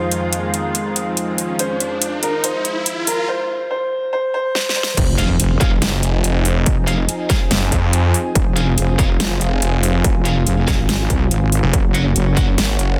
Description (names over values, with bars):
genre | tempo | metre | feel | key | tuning
heavy wobble dubstep | 142 BPM | 4/4 | half-time | F phrygian | A4 = 440 Hz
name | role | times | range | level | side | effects
warm concert grand piano | melody | 0.0-5.0 s | Bb4 to C5 | -25 LUFS | equal | delay
lush unison pad | sustained chords | 0.0-13.0 s | F2 to Ab4 | -27 LUFS | equal | chorus, sidechain pumping
riser and impact | sound effects | 0.4-6.7 s | none | -29 LUFS | equal | none
dubstep drum kit | drums | 0.1-12.9 s | crash cymbal, hi-hat, snare drum | -23 LUFS | equal | studio reverb
wobble bass | bass | 5.0-12.6 s | F1 to C2 | -20 LUFS | equal | chorus, overdrive
electronic kick drum | drums | 5.0-12.5 s | none | -20 LUFS | equal | distortion, studio reverb
heavy high-gain guitar | stabs | 5.2-12.4 s | Db4 to Gb5 | -30 LUFS | equal | distortion, delay
snarling distorted saw bass | bass | 5.8-13.0 s | F1 to F2 | -19 LUFS | equal | distortion, overdrive
room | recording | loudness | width
digital ambience | dense, heavily limited modern master, high-pass filter | -18 LUFS | mono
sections
0.0-5.0 A section; 5.0-13.0 B section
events
build-up 0.0-5.0; riser 0.7-3.3; drum fill 4.6-5.0; drop 5.0-13.0; impact 5.0-6.7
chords
0.0 Fm7; 11.7 Gb